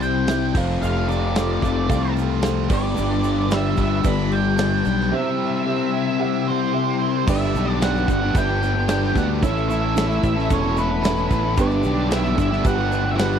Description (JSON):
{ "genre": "classic rock", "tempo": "112 BPM", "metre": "4/4", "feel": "straight", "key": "unclear", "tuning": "A4 = 440 Hz", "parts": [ { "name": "octave-fuzz lead guitar", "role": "melody", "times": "0.0-13.4 s", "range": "B4 to B5", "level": "-26 LUFS", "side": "right 2 dB", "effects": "distortion" }, { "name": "dark upright piano", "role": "accompaniment", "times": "0.0-13.4 s", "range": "G3 to G5", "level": "-29 LUFS", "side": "right 8 dB", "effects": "none" }, { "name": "biting overdriven guitar", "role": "riff", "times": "0.0-13.4 s", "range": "F2 to C5", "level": "-24 LUFS", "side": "left 12 dB", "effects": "none" }, { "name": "overdriven electric guitar", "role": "riff", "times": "0.0-13.4 s", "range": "F2 to C5", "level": "-28 LUFS", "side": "right 13 dB", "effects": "none" }, { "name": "fuzz fingered electric bass", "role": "bass", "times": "0.0-13.4 s", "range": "E1 to D2", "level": "-23 LUFS", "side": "right 1 dB", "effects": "overdrive" }, { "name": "big rock drum kit", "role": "drums", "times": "0.0-13.3 s", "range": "crash cymbal, kick drum, snare drum", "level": "-26 LUFS", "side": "right 1 dB", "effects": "none" }, { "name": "egg shaker", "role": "percussion", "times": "0.0-13.4 s", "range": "none", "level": "-46 LUFS", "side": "left 15 dB", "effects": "none" }, { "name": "octave-fuzz lead guitar", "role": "second line", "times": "6.5-13.4 s", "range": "B3 to G4", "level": "-32 LUFS", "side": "right 5 dB", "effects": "distortion" } ], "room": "little or no reverb", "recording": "dry, close 1970s-style studio recording", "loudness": "-18 LUFS", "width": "side -8 dB against mid", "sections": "0.0-7.3 A section; 7.3-13.4 B section", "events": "upright piano fill 5.7-7.3", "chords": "0.0 C; 0.6 F; 2.7 G; 5.1 C; 7.3 G; 9.4 A; 11.6 G", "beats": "0.28 | 0.82 1.36 1.90 2.44 | 2.98 3.52 4.06 4.59 | 5.13 5.67 6.21 6.75 | 7.28 7.82 8.36 8.89 | 9.43 9.96 10.50 11.04 | 11.57 12.11 12.64 13.18" }